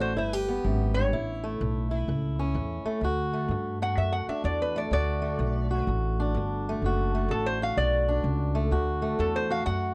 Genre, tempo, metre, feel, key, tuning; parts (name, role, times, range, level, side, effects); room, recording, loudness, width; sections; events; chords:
acoustic country blues, solo or duo; 126 BPM; 4/4; swing 64% on 8ths; D major; A4 = 440 Hz
lap resonator guitar; melody; 0.0-9.9 s; A4 to F#5; -32 LUFS; equal
fingerpicked swing-style acoustic guitar; accompaniment; 0.0-9.9 s; D2 to G4; -32 LUFS; equal
upright bass; bass; 0.0-9.9 s; F#1 to G2; -31 LUFS; equal
little or no reverb; dry, close 1970s-style studio recording; -28 LUFS; mono
0.0-3.0 A section; 3.0-9.9 B section
resonator guitar played with a steel bar solo 3.0-9.9
0.2 G; 1.1 A; 3.0 D